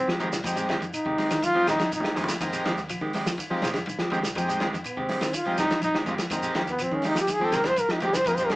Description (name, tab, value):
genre	afrobeat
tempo	123 BPM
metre	4/4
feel	straight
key	F minor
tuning	A4 = 440 Hz
part	clear trombone	melody	0.0-8.6 s	B3 to C5	-24 LUFS	equal	none
part	electric guitar at the edge of break-up	arpeggios	0.0-8.6 s	C3 to G3	-37 LUFS	left 2 dB	none
part	semi-hollow electric guitar	stabs	0.1-8.6 s	Eb3 to G4	-31 LUFS	right 2 dB	none
part	fingered electric bass	bass	0.1-8.6 s	C2 to F3	-34 LUFS	equal	none
part	warm soul drum kit	drums	0.1-8.6 s	hi-hat, kick drum, ride cymbal, snare drum	-32 LUFS	equal	none
part	claves	percussion	0.1-8.4 s	none	-42 LUFS	left 2 dB	none
part	overdriven combo organ	accompaniment	0.2-8.6 s	Ab3 to Bb4	-30 LUFS	equal	none
part	congas	percussion	0.2-8.6 s	none	-36 LUFS	equal	none
part	shekere	percussion	0.2-8.5 s	none	-37 LUFS	right 2 dB	none
room	moderate studio reverb, RT60 0.5 s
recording	band playing live in one room, small speaker sound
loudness	-23 LUFS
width	side -20 dB against mid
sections	0.0-8.6 A section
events	trombone solo 0.0-8.6; drum fill 1.7-2.4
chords	0.0 Fm9